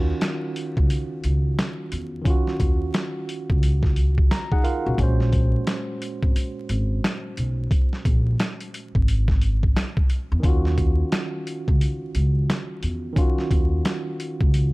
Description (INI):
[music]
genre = hip hop, boom-bap hip-hop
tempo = 88 BPM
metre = 4/4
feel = swing 63% on 16ths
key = Eb dorian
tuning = A4 = 440 Hz
[part]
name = tine electric piano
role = accompaniment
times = 0.0-14.7 s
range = Bb2 to Bb5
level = -29 LUFS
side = right 1 dB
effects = slow stereo tremolo, high-pass filter, low-pass filter
[part]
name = upright bass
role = bass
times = 0.0-14.7 s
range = Ab1 to Fb2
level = -22 LUFS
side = equal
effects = none
[part]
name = boom bap sampler-style drum kit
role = drums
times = 0.2-14.7 s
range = hi-hat, kick drum, snare drum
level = -22 LUFS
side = equal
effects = none
[sound]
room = little or no reverb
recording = dark, warm production, vinyl crackle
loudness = -20 LUFS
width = side -22 dB against mid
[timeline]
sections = 0.0-14.7 A section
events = tine electric piano fill 4.0-5.0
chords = 0.0 Ebm9; 5.0 Bbm9; 10.4 Ebm9